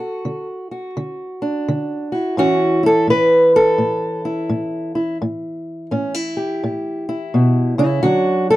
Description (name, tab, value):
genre	acoustic country blues, solo or duo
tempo	85 BPM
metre	4/4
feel	swing 63% on 8ths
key	A mixolydian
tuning	A4 = 440 Hz
part	fingerpicked old ladder-braced acoustic guitar	solo	0.0-8.6 s	A2 to B4	-16 LUFS	equal	none
room	little or no reverb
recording	dry, close 1970s-style studio recording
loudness	-16 LUFS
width	side -16 dB against mid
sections	0.0-8.6 A section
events	steel-string acoustic guitar solo 0.0-8.6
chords	0.0 D; 2.4 A7; 8.0 D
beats	0.23 0.94 1.65 | 2.36 3.07 3.78 4.48 | 5.19 5.90 6.61 7.32 | 8.03